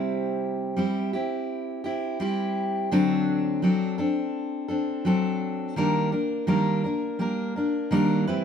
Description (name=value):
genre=pop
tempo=84 BPM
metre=4/4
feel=straight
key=unclear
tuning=A4 = 441 Hz
part: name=fingerpicked steel-string acoustic guitar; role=solo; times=0.0-8.4 s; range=C3 to B4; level=-23 LUFS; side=equal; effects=none
room=moderate stone room reverb, RT60 1.0 s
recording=band playing live in one room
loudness=-23 LUFS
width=side -7 dB against mid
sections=0.0-5.8 A section; 5.8-8.4 B section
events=none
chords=0.0 C; 2.9 D7; 5.8 Ebmaj7